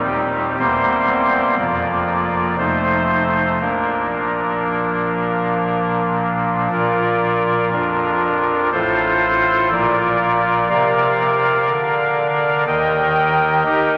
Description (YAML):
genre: classical, chorale-style piece for pipe organ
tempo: 60 BPM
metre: 3/4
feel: uneven beats, rubato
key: Bb major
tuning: A4 = 441 Hz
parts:
  - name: pipe organ, soft reed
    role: solo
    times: 0.0-14.0 s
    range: Eb1 to G5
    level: -18 LUFS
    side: equal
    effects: none
room: wet church reverb, RT60 3.6 s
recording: none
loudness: -18 LUFS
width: mono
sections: 0.0-6.7 A section; 6.7-14.0 B section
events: none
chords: 0.0 Cm/Eb; 0.6 C7/E; 1.6 Bb/F; 2.6 F7; 3.6 Bb; 8.7 F/A; 9.7 Bb; 12.7 Eb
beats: | 0.59 1.58 2.58 | 3.61 4.66 5.70 | 6.72 7.73 8.73 | 9.73 10.72 11.71 | 12.69 13.67